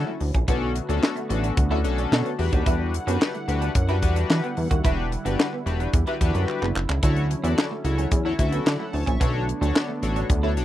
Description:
early-eighties boogie funk; 110 BPM; 4/4; straight; A4 = 438 Hz
chorused polysynth; accompaniment; 0.0-10.6 s; C#4 to C#6; -29 LUFS; left 4 dB
warm analog pad; sustained chords; 0.0-10.6 s; D3 to F#5; -33 LUFS; right 1 dB; chorus
chorused synth bass; bass; 0.0-10.6 s; E1 to E3; -24 LUFS; equal
semi-hollow electric guitar; riff; 0.1-10.6 s; A3 to F#4; -33 LUFS; right 6 dB; lush chorus
tight funk drum kit; drums; 0.2-10.6 s; handclaps, hi-hat, kick drum, snare drum; -23 LUFS; equal
little or no reverb; dry, close 1970s-style studio recording; -21 LUFS; side -13 dB against mid
0.0-10.6 A section
drum fill 6.5-7.0
0.5 Bm9; 2.4 Em9; 7.0 Dmaj9; 9.2 Bm9
| 0.48 1.03 1.57 2.12 | 2.66 3.21 3.75 4.30 | 4.84 5.39 5.94 6.48 | 7.03 7.57 8.12 8.66 | 9.21 9.75 10.30

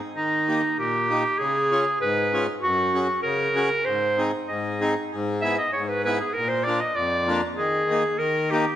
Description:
alpine folk; 97 BPM; 2/4; straight; A4 = 438 Hz
bright clarinet; melody; 0.2-8.8 s; Eb4 to E5; -23 LUFS; right 1 dB
accordion; accompaniment; 0.2-8.7 s; F2 to Ab4; -25 LUFS; left 2 dB
wet recital hall reverb, RT60 1.6 s; -21 LUFS; side -11 dB against mid
0.2-8.8 A section
0.2 Eb; 1.4 Db; 2.6 Gbsus2; 3.9 Ab; 5.1 E/G#; 6.3 Bb; 7.6 Ebsus4; 8.2 Eb
| 0.16 0.78 | 1.40 2.01 | 2.62 3.24 | 3.86 4.48 | 5.11 5.73 | 6.35 6.96 | 7.57 8.19

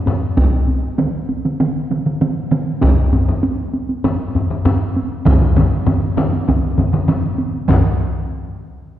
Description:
japanese traditional, taiko drum ensemble; 99 BPM; 4/4; straight
solo taiko drums; percussion; 0.1-8.0 s; -21 LUFS; right 2 dB
taiko ensemble; percussion; 0.1-8.3 s; -18 LUFS; left 2 dB
solo taiko drums; percussion; 0.4-8.0 s; -18 LUFS; equal
taiko ensemble; percussion; 1.0-8.2 s; -20 LUFS; right 2 dB
wet concert hall reverb, RT60 2.0 s; heard from further back in the room; -14 LUFS; side -12 dB against mid
0.0-7.7 A section; 7.7-9.0 B section
| 0.38 0.99 1.60 2.22 | 2.83 3.44 4.05 4.66 | 5.26 5.87 6.48 7.08 | 7.69

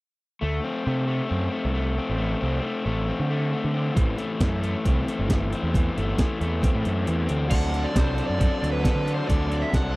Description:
indie rock; 135 BPM; 4/4; straight; A4 = 440 Hz
crunchy overdriven guitar; riff; 0.4-10.0 s; E3 to A4; -27 LUFS; left 2 dB
fuzz picked electric bass; bass; 0.4-10.0 s; G1 to D3; -26 LUFS; right 1 dB; overdrive
breakbeat sampler-style drum kit; drums; 4.0-9.8 s; crash cymbal, hi-hat, kick drum, snare drum; -23 LUFS; right 1 dB
dark smooth lead guitar; melody; 7.5-10.0 s; B4 to F#5; -30 LUFS; right 3 dB; overdrive, tape echo
little or no reverb; dry, close 1970s-style studio recording; -22 LUFS; side -21 dB against mid
0.4-7.5 A section; 7.5-10.0 B section
kick and snare drop out 7.1-7.5
0.4 D7(no3); 4.0 Am7; 7.5 D7
| 0.41 0.86 1.30 1.75 | 2.19 2.63 3.08 3.52 | 3.96 4.41 4.85 5.29 | 5.74 6.18 6.62 7.07 | 7.51 7.96 8.40 8.84 | 9.29 9.73

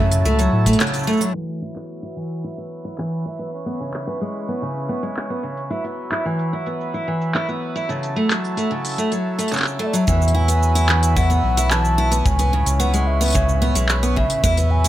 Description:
folktronica; 110 BPM; 4/4; straight; E major; A4 = 439 Hz
mellow baroque flute; melody; 0.0-0.8, 9.8-14.9 s; D5 to A5; -24 LUFS; equal; ping-pong delay
mellow accordion; sustained chords; 0.0-14.9 s; E3 to B4; -28 LUFS; right 2 dB; low-pass filter
picked steel-string acoustic guitar; arpeggios; 0.0-14.9 s; C#3 to E4; -23 LUFS; equal; low-pass filter
warm sub bass; bass; 0.0-0.8, 10.1-14.9 s; B1 to A2; -18 LUFS; equal
minimal click drum kit; drums; 0.1-14.9 s; handclaps, hi-hat, shaker; -24 LUFS; equal
kick drum; drums; 0.7-0.8, 10.1-14.5 s; -24 LUFS; equal
light reverb, small room ambience; low-pass filter; -18 LUFS; side -13 dB against mid
0.0-1.3 A section; 1.3-10.1 B section; 10.1-14.9 A section
band accent 0.8; filter sweep on steel-string acoustic guitar 1.3-10.1; filter sweep on accordion 1.3-10.1; filter sweep 1.3-10.1
0.0 F#m7; 1.3 Esus2; 3.5 C#m7; 5.7 Esus2; 7.9 F#m7; 10.1 Esus2; 12.3 C#m7
0.26 0.80 | 1.35 1.89 2.44 2.98 | 3.53 4.08 4.62 5.17 | 5.71 6.26 6.80 7.35 | 7.89 8.44 8.98 9.53 | 10.07 10.62 11.16 11.71 | 12.26 12.80 13.35 13.89 | 14.44

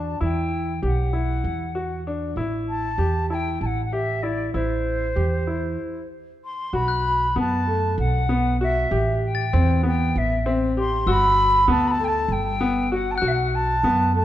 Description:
contemporary instrumental, chamber music in an uneven meter; 194 BPM (eighths); 7/8; straight; A4 = 440 Hz
wooden flute; melody; 0.0-14.2 s; C5 to C6; -24 LUFS; equal
clear baby grand piano; arpeggios; 0.0-14.2 s; A3 to G4; -26 LUFS; left 2 dB
upright bass; bass; 0.0-14.2 s; G1 to F#2; -24 LUFS; right 1 dB
glockenspiel with hard plastic mallets; texture; 6.9-13.5 s; E6 to A6; -34 LUFS; left 7 dB
light reverb; dark, warm production; -20 LUFS; side -12 dB against mid
0.0-6.7 A section; 6.7-14.2 B section
stop 5.8-6.7
0.0 Emadd9; 2.4 Am7; 6.7 B5; 8.9 Am9; 11.1 Gmaj7; 13.2 B5
| 0.21 0.52 0.83 1.13 1.44 1.75 2.06 | 2.37 2.68 2.99 3.30 3.61 3.92 4.23 | 4.54 4.85 5.16 5.47 5.79 6.10 6.42 | 6.73 7.05 7.36 7.67 7.99 8.30 8.61 | 8.92 9.23 9.54 9.85 10.15 10.46 10.77 | 11.07 11.38 11.68 11.99 12.30 12.61 12.91 | 13.22 13.53 13.84 14.15

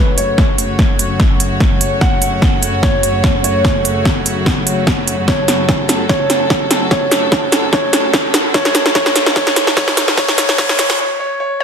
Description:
heavy wobble dubstep; 147 BPM; 4/4; swing 54% on 16ths, half-time; F# minor; A4 = 440 Hz
dark baby grand piano; melody; 0.0-11.6 s; B4 to F#5; -19 LUFS; right 1 dB; digital delay
rich studio string section; sustained chords; 0.0-11.0 s; F#2 to C#5; -20 LUFS; left 1 dB; sidechain pumping
big-room dance drum kit; drums; 0.2-11.6 s; hi-hat, snare drum, toms; -15 LUFS; equal; overdrive
electronic kick drum; drums; 0.4-10.7 s; -16 LUFS; equal; overdrive
riser; sound effects; 7.1-11.0 s; -24 LUFS; left 2 dB
moderate lush hall reverb, RT60 1.6 s, digital ambience; dense, heavily limited modern master, high-pass filter; -11 LUFS; side -6 dB against mid
0.0-11.6 A section
build-up 0.0-11.6; drum fill 0.0-11.0; filter sweep 0.0-11.6; break 11.0-11.6
0.0 F#m
| 0.38 0.79 1.20 1.60 | 2.01 2.42 2.83 3.24 | 3.65 4.05 4.46 4.87 | 5.28 5.69 6.09 6.50 | 6.91 7.32 7.73 8.14 | 8.54 8.95 9.36 9.77 | 10.18 10.59 10.99 11.40

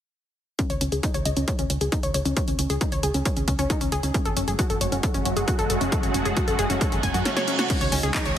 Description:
uplifting trance; 135 BPM; 4/4; straight; A4 = 437 Hz
wide unison pluck; arpeggios; 0.6-8.3 s; C#4 to G#5; -27 LUFS; left 1 dB; sidechain pumping, dub echo
electronic kick drum; drums; 0.6-8.2 s; -26 LUFS; equal; overdrive
techno drum kit; drums; 0.6-8.3 s; crash cymbal, handclaps, hi-hat, snare drum; -30 LUFS; equal; overdrive
solid FM bass; bass; 0.7-8.3 s; F#1 to F#2; -27 LUFS; equal; sidechain pumping
analog string pad; sustained chords; 4.1-8.4 s; C#3 to G#4; -28 LUFS; right 1 dB; ensemble chorus, sidechain pumping
reverse cymbal; sound effects; 7.0-7.7 s; -31 LUFS; right 6 dB
light reverb, digital ambience; heavily compressed radio sound; -21 LUFS; side -10 dB against mid
0.6-7.7 A section
filter sweep on synth pluck 0.6-7.7; reverse cymbal 7.0-7.7; kick drops out 7.3-7.7; drum fill 7.3-7.7
0.6 N.C.; 4.1 F#madd9; 7.7 C#sus2
| 0.59 1.03 1.48 1.92 | 2.37 2.81 3.25 3.70 | 4.14 4.59 5.03 5.48 | 5.92 6.37 6.81 7.25 | 7.70 8.14

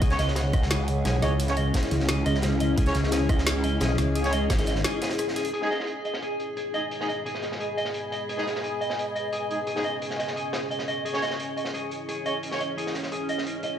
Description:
dark technical drum and bass; 174 BPM; 4/4; straight; G# minor; A4 = 439 Hz
dark analog pad; sustained chords; 0.0-13.8 s; G#3 to D#5; -34 LUFS; right 1 dB; chorus, sidechain pumping
clean electric guitar; arpeggios; 0.0-13.7 s; G#4 to D#5; -32 LUFS; left 1 dB; vintage 12-bit sampler grit, sidechain pumping, low-pass filter, digital delay
growl bass; bass; 0.0-4.8 s; G#1 to C#2; -25 LUFS; equal; distortion, chorus, tube saturation
crunchy breakbeat drum kit; drums; 0.0-13.7 s; hi-hat, snare drum; -35 LUFS; equal; high-pass filter on hats, low-pass filter on hats, high-pass filter on snare, low-pass filter on snare, high-pass filter on room, low-pass filter on room
drum and bass drum kit; drums; 0.0-5.5 s; hi-hat, rim click, snare drum; -31 LUFS; equal; low-pass filter on hats, low-pass filter on cymbals, low-pass filter on snare, low-pass filter on room
electronic kick drum; drums; 0.0-4.6 s; -23 LUFS; equal
granular cloud pad; texture; 0.0-13.8 s; C#4 to C#6; -32 LUFS; equal; built-in reverb, sidechain pumping
warm brass ensemble; stabs; 0.1-12.6 s; G#3 to C#5; -33 LUFS; right 1 dB; digital delay
moderate lush hall reverb, RT60 1.9 s, digital ambience; played on a big sound system in a bare room, large studio reverb; -24 LUFS; side -9 dB against mid
0.0-5.5 A section; 5.5-13.8 B section
break 4.8-5.5; filter sweep on analog synth pad 5.5-13.8
0.0 C#m; 5.5 G#m; 11.1 C#m
| 0.02 0.36 0.71 1.05 | 1.40 1.74 2.09 2.43 | 2.78 3.12 3.47 3.81 | 4.16 4.50 4.84 5.19 | 5.54 5.88 6.22 6.57 | 6.91 7.26 7.60 7.95 | 8.29 8.64 8.98 9.33 | 9.67 10.02 10.36 10.71 | 11.05 11.40 11.74 12.09 | 12.43 12.78 13.12 13.47

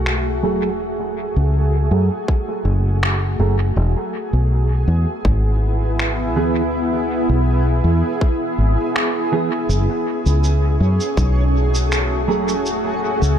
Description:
ambient dub; 81 BPM; 4/4; swing 53% on 16ths; F# minor; A4 = 444 Hz
granular cloud pad; sustained chords; 0.0-13.4 s; A3 to G#4; -22 LUFS; equal; built-in reverb
fingered electric bass; bass; 0.0-13.4 s; E1 to F#2; -17 LUFS; equal
electronic finger snaps and shaker; drums; 0.1-13.4 s; -25 LUFS; equal; dub echo
mellow electric guitar; stabs; 0.4-12.5 s; E3 to G#4; -25 LUFS; right 4 dB; low-pass filter, dub echo
electronic kick drum; drums; 2.3-11.3 s; -18 LUFS; equal; overdrive
backwards swelling texture; texture; 10.6-13.4 s; C#4 to C#5; -29 LUFS; right 3 dB; built-in reverb
light reverb, digital ambience; -16 LUFS; side -9 dB against mid
0.0-13.4 A section
filter sweep on clean electric guitar 0.0-13.4
0.0 F#madd9; 3.8 E; 9.7 F#madd9
0.06 | 0.81 1.55 2.29 3.03 | 3.77 4.51 5.25 5.99 | 6.73 7.47 8.21 8.95 | 9.69 10.43 11.18 11.92 | 12.66

